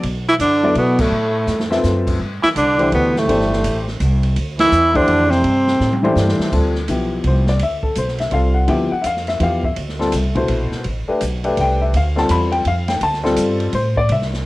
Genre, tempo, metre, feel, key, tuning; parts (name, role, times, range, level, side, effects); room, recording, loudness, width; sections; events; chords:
modal jazz; 166 BPM; 3/4; swing 64% on 8ths; D dorian from 6.5 s; A4 = 440 Hz
upright bass; bass; 0.0-14.4 s; G1 to B2; -20 LUFS; equal
open jazz drum kit; drums; 0.0-14.4 s; crash cymbal, hi-hat, kick drum, ride cymbal, snare drum, toms; -26 LUFS; right 1 dB
breathy tenor saxophone; melody; 0.3-6.2 s; A3 to E4; -15 LUFS; equal; cassette tape, plate reverb
trombone with metal mute; second line; 0.3-6.2 s; A2 to E3; -26 LUFS; right 3 dB; cassette tape, plate reverb
warm upright piano; accompaniment; 0.6-14.3 s; B2 to B5; -19 LUFS; left 2 dB; cassette tape, plate reverb
light reverb; home recording on cassette; -15 LUFS; side -19 dB against mid
0.0-6.5 A section; 6.5-14.5 B section
band accent 0.9, 4.5; drum fill 1.5-1.8, 5.8-6.5
0.0 E9sus4; 2.2 Gsus4; 6.5 Dm11